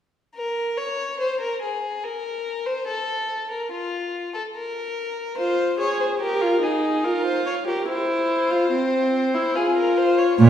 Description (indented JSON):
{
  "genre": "classical, baroque-style fugue for string quartet",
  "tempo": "72 BPM",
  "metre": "3/4",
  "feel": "straight",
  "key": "unclear",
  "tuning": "A4 = 440 Hz",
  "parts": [
    { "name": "warm violin", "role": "second line", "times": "0.4-10.5 s", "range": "F4 to Db5", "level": "-24 LUFS", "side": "left 2 dB", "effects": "none" },
    { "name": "warm viola", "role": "accompaniment", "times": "5.4-10.5 s", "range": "C4 to Ab4", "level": "-21 LUFS", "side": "equal", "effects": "none" },
    { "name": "warm cello", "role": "bass", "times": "10.4-10.5 s", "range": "Bb2", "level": "-9 LUFS", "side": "right 4 dB", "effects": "none" }
  ],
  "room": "wet recital hall reverb, RT60 1.8 s",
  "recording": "heard from further back in the room",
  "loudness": "-21 LUFS",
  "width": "side -10 dB against mid",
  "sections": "0.4-10.5 A section",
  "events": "none",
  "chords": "0.4 N.C.; 5.4 Fm; 7.0 Gm7/F; 7.9 C/E; 9.6 Fm"
}